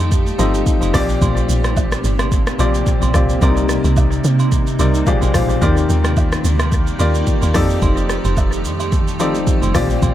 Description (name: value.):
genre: amapiano.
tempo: 109 BPM.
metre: 4/4.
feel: swing 55% on 16ths.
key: unclear.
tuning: A4 = 441 Hz.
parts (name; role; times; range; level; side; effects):
warm concert grand piano; accompaniment; 0.0-10.1 s; Bb2 to F5; -20 LUFS; left 3 dB; analog delay.
granular cloud pad; sustained chords; 0.0-10.1 s; C3 to D5; -23 LUFS; right 1 dB; built-in reverb.
deep log drum bass; bass; 0.0-10.1 s; F1 to C3; -18 LUFS; equal; none.
deep house drum kit; drums; 0.1-10.1 s; hi-hat, kick drum, rim click, shaker; -19 LUFS; equal; none.
agogo bells and woodblock; percussion; 0.4-10.1 s; none; -29 LUFS; right 6 dB; analog delay.
room: digital ambience.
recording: echo-heavy mix.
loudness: -14 LUFS.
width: side -12 dB against mid.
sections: 0.0-10.1 A section.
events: none.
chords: 0.0 F13; 0.9 Bb69; 3.4 Cm9; 5.1 Bb13; 5.6 Ebmaj7; 7.5 F13.